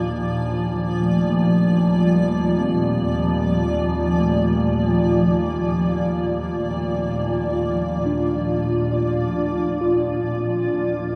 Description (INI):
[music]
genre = ambient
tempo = 70 BPM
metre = 4/4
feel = straight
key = unclear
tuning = A4 = 440 Hz
[part]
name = granular cloud pad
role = sustained chords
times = 0.0-11.2 s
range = Bb2 to D5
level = -23 LUFS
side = equal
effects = built-in reverb
[part]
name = mellow tine electric piano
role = arpeggios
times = 0.0-11.2 s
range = F3 to F4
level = -26 LUFS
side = equal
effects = diffuse ambient delay
[part]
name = rich chamber double bass section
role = bass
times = 0.0-11.2 s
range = Eb2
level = -31 LUFS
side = equal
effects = none
[part]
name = analog drone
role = drone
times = 0.0-10.3 s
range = none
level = barely audible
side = none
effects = none
[sound]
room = wet concert hall reverb, RT60 2.1 s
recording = dark, warm production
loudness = -21 LUFS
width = mono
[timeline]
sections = 0.0-10.2 A section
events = none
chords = 0.0 Bb/Eb; 10.2 Ebmaj9